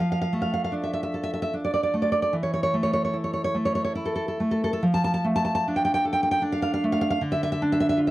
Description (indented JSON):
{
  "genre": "romantic piece for solo classical guitar",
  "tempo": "67-79 BPM",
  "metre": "3/4",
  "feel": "rubato",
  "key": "D minor",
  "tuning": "A4 = 440 Hz",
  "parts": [
    { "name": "nylon-string guitar", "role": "solo", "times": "0.0-8.1 s", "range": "D3 to A5", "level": "-22 LUFS", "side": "right 1 dB", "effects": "none" }
  ],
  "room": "moderate studio reverb, RT60 0.5 s",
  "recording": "vinyl crackle",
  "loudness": "-22 LUFS",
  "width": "side -16 dB against mid",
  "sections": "0.0-8.1 A section",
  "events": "none",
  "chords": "0.0 Dm/F; 2.4 A5/E; 4.8 Dm/F; 7.2 Dm",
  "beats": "0.74 1.55 | 2.36 3.17 3.97 | 4.84 5.65 6.43 | 7.22 7.99"
}